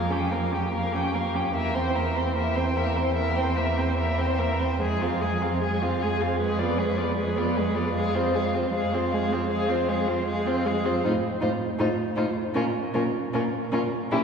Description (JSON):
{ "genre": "classical, slow romantic movement for string quartet", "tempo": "72-81 BPM", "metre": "4/4", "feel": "rubato", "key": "F minor, Bb minor from 11.0 s", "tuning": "A4 = 441 Hz", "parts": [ { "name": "muted violin", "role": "melody", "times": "0.0-14.2 s", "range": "G4 to Ab5", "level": "-30 LUFS", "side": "left 4 dB", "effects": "none" }, { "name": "muted violin", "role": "second line", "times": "0.0-14.2 s", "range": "Fb4 to C5", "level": "-30 LUFS", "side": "equal", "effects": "none" }, { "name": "muted viola", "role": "accompaniment", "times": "0.0-14.2 s", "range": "Ab3 to Eb4", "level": "-28 LUFS", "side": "right 2 dB", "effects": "none" }, { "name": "muted cello", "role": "bass", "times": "0.0-14.2 s", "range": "E2 to Bb2", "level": "-28 LUFS", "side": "right 2 dB", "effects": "none" } ], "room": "wet cathedral reverb, RT60 4.8 s", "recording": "recorded in a church or concert hall, studio ambience", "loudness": "-23 LUFS", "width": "side -6 dB against mid", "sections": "0.0-14.2 A section", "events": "none", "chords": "0.0 Gm7b5/F; 1.5 C7/E; 4.8 Fm; 6.4 Fdim7; 8.0 Fm; 11.0 F7/A; 12.6 Bbm" }